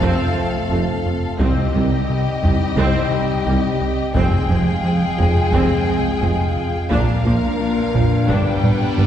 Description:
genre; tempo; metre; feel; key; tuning
cinematic, hybrid orchestral and electronic film score; 87 BPM; 4/4; straight; C minor; A4 = 440 Hz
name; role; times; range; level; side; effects
warm symphonic violin section; melody; 0.0-9.1 s; Eb5 to G5; -28 LUFS; left 4 dB; none
dark symphonic violin section; second line; 0.0-9.1 s; G4 to B4; -27 LUFS; left 2 dB; none
rich symphonic viola section; accompaniment; 0.0-9.1 s; Eb3 to D4; -28 LUFS; right 1 dB; none
hollow soft pad; sustained chords; 0.0-9.1 s; G3 to G5; -27 LUFS; left 1 dB; chorus
mellow French horn section; sustained chords; 0.0-9.1 s; G3 to Ab4; -27 LUFS; left 3 dB; none
harp-like synth pluck; arpeggios; 0.0-9.1 s; C3 to Bb4; -29 LUFS; left 1 dB; none
rubbery square bass; riff; 0.0-9.1 s; C2 to Bb3; -22 LUFS; right 1 dB; none
mellow tuba; bass; 0.0-9.1 s; F1 to C2; -25 LUFS; right 1 dB; none
rich symphonic cello section; bass; 0.0-9.1 s; C2 to Bb2; -26 LUFS; right 2 dB; none
warm symphonic double bass section; bass; 0.0-9.1 s; F1 to C2; -26 LUFS; right 1 dB; none
taiko ensemble; drums; 0.0-9.1 s; none; -24 LUFS; equal; none
reverse cymbal; sound effects; 7.5-9.1 s; none; -31 LUFS; right 2 dB; none
room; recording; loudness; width
wet concert hall reverb, RT60 2.5 s; heard from further back in the room; -16 LUFS; side -10 dB against mid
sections
0.0-9.1 A section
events
reverse cymbal 7.5-9.1; drum fill 8.6-9.1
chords
0.0 F; 1.4 Cm; 4.2 Fmadd9; 6.9 Bb; 8.3 G

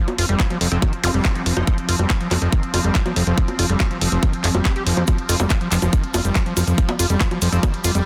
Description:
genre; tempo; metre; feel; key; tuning
psychedelic trance; 141 BPM; 4/4; straight; unclear; A4 = 440 Hz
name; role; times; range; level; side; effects
swarming drone; sustained chords; 0.2-8.1 s; F3 to C4; -31 LUFS; equal; built-in reverb, sidechain pumping
screaming distorted acid line; riff; 0.0-8.1 s; Eb3 to G4; -27 LUFS; equal; distortion, chorus, sidechain pumping, tape echo
garage drum kit; drums; 0.1-8.0 s; bongos, handclaps, hi-hat; -27 LUFS; equal; none
fat analog bass; bass; 0.2-8.0 s; F1 to F2; -22 LUFS; equal; none
electronic kick drum; drums; 0.4-7.7 s; none; -21 LUFS; equal; none
metallic wobble bass; second line; 0.7-1.7, 7.5-7.6 s; C4 to Eb4; -36 LUFS; equal; none
zap; sound effects; 1.0-1.1 s; none; -32 LUFS; equal; none
cabasa; percussion; 5.1-8.0 s; none; -32 LUFS; equal; none
room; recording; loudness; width
light reverb; dense, heavily limited modern master; -19 LUFS; mono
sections
0.0-8.1 A section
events
none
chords
0.0 F5

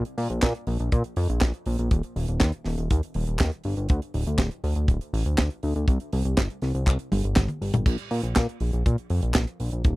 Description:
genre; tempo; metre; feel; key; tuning
italo disco; 121 BPM; 4/4; straight; Bb major; A4 = 444 Hz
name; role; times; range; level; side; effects
chorused synth bass; bass; 0.0-10.0 s; D1 to Bb2; -25 LUFS; equal; none
tight funk drum kit; drums; 0.1-9.9 s; crash cymbal, handclaps, hi-hat, snare drum, toms; -27 LUFS; right 1 dB; none
kick drum; drums; 0.4-9.9 s; none; -22 LUFS; equal; none
room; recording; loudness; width
little or no reverb; dry, close 1970s-style studio recording; -23 LUFS; side -20 dB against mid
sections
0.0-10.0 A section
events
drum fill 7.1-7.9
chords
none

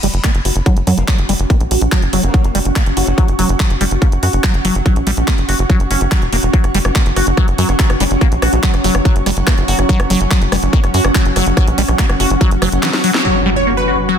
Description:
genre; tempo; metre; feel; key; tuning
psychedelic trance; 143 BPM; 4/4; straight; F# major; A4 = 441 Hz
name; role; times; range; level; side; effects
liquid acid bass; riff; 0.0-14.2 s; E3 to F#4; -19 LUFS; moving between left 5 dB and right 4 dB; phaser, auto-pan, sidechain pumping, digital delay
tight sequencer bass; bass; 0.0-12.8 s; E1 to F#2; -16 LUFS; equal; none
garage drum kit; drums; 0.0-13.2 s; handclaps, hi-hat, rim click, snare drum; -20 LUFS; equal; low-pass filter on hats, studio reverb, low-pass filter on snare, low-pass filter on cymbals
ethereal airy pad; texture; 0.0-14.2 s; C#4 to C#6; -21 LUFS; right 1 dB; ensemble chorus, built-in reverb, sidechain pumping
electronic kick drum; drums; 0.2-12.5 s; none; -13 LUFS; equal; studio reverb
formant-sweep wobble bass; second line; 1.0-3.3, 7.7-9.6 s; E3 to C#4; -30 LUFS; left 4 dB; none
swarming drone; sustained chords; 7.1-14.2 s; F#3 to C#4; -24 LUFS; left 2 dB; built-in reverb, sidechain pumping
supersaw stab; melody; 13.2-14.2 s; F#4 to C#5; -17 LUFS; right 1 dB; phaser, sidechain pumping, dub echo
impact; sound effects; 13.2-14.2 s; none; -20 LUFS; equal; none
room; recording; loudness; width
light reverb, digital ambience; dense, heavily limited modern master; -12 LUFS; side -8 dB against mid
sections
0.0-13.2 A section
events
filter sweep on acid bass 0.0-13.2; drum fill 12.8-13.2; band accent 13.1; impact 13.2-14.2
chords
0.0 F#5

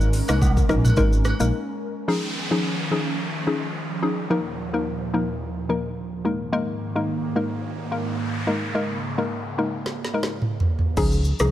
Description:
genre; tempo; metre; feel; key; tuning
afrobeats; 108 BPM; 4/4; swing 55% on 16ths; unclear; A4 = 445 Hz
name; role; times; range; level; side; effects
hollow square pluck; accompaniment; 0.0-11.5 s; F3 to Bb4; -25 LUFS; left 2 dB; chorus
airy breathy pad; sustained chords; 0.0-10.9 s; Eb2 to Bb4; -30 LUFS; right 1 dB; chorus
fingered electric bass; bass; 0.0-1.5, 11.0-11.5 s; Ab1 to Db2; -21 LUFS; equal; none
afro-pop drum kit; drums; 0.0-1.5, 9.9-11.5 s; crash cymbal, hi-hat, kick drum, rim click, shaker, snare drum, toms; -22 LUFS; right 1 dB; overdrive
agogo bells and woodblock; percussion; 0.3-1.4 s; none; -34 LUFS; right 2 dB; none
downlifter and noise sweep; sound effects; 2.1-11.0 s; none; -33 LUFS; right 1 dB; none
room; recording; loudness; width
light reverb, digital ambience; none; -21 LUFS; side -12 dB against mid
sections
0.0-2.1 A section; 2.1-11.0 B section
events
break 1.5-2.1; noise sweep 6.9-11.0; drum fill 9.9-11.0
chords
0.0 Absus2; 2.1 Dbadd9; 4.3 Ebsus2; 6.2 Absus2; 11.0 Dbadd9

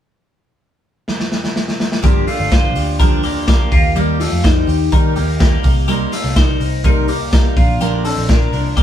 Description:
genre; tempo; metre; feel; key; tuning
jangly indie pop; 125 BPM; 4/4; straight; G minor; A4 = 440 Hz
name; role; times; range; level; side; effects
raw garage drum kit; drums; 1.1-8.8 s; hi-hat, kick drum, snare drum; -15 LUFS; equal; none
picked steel-string acoustic guitar; accompaniment; 2.0-8.8 s; G2 to Bb4; -22 LUFS; right 3 dB; none
twelve-string electric guitar; arpeggios; 2.0-8.8 s; A3 to C5; -20 LUFS; left 4 dB; phaser
vintage muted picked electric bass; bass; 2.0-8.8 s; G1 to Eb3; -20 LUFS; equal; none
room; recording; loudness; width
light reverb; band playing live in one room; -13 LUFS; side -10 dB against mid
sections
0.1-2.0 A section; 2.0-8.8 B section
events
drum fill 1.1-2.0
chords
0.1 N.C.; 2.0 Gm7; 3.7 Eb; 5.6 Cm7; 7.6 Bb

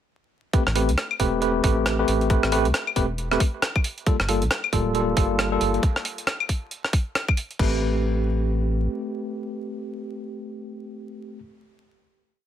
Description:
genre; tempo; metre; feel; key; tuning
UK garage, two-step garage; 136 BPM; 4/4; swing 60% on 16ths; A minor; A4 = 436 Hz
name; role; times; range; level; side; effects
tine electric piano; stabs; 0.5-11.4 s; G3 to B4; -25 LUFS; equal; medium stereo tremolo, dub echo
breakbeat sampler-style drum kit; drums; 0.5-7.7 s; claves, crash cymbal, hi-hat, rim click; -26 LUFS; left 1 dB; none
electronic kick drum; drums; 0.5-7.7 s; none; -22 LUFS; equal; none
rubbery square bass; bass; 0.7-8.9 s; D1 to C2; -25 LUFS; equal; none
room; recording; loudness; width
light reverb; vinyl crackle; -21 LUFS; side -10 dB against mid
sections
0.5-7.6 drop; 7.6-11.1 final chord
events
drop 0.5-7.6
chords
0.5 Am9; 4.1 Gm9; 7.6 Am9

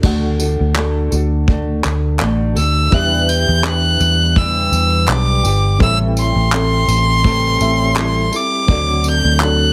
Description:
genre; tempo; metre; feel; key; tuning
acoustic pop; 83 BPM; 4/4; swing 55% on 16ths; unclear; A4 = 445 Hz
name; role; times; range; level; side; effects
mellow reed electric piano; accompaniment; 0.0-9.7 s; C4 to F#5; -29 LUFS; equal; fast tremolo
nylon-string guitar; accompaniment; 0.0-9.7 s; A2 to A4; -24 LUFS; equal; double-tracked
vintage muted fingered electric bass; bass; 0.0-9.7 s; G1 to E2; -19 LUFS; equal; none
vintage brush drum kit; drums; 0.0-9.6 s; crash cymbal, handclaps, kick drum, tambourine; -21 LUFS; equal; none
group handclap; percussion; 0.8-9.6 s; none; -31 LUFS; equal; none
warm violin; melody; 2.6-9.7 s; C6 to G6; -19 LUFS; equal; none
room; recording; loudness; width
light reverb; heavily compressed radio sound; -15 LUFS; mono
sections
0.0-2.9 A section; 2.9-9.7 B section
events
none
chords
0.0 D; 2.9 Em7; 5.8 Am7; 8.7 D7

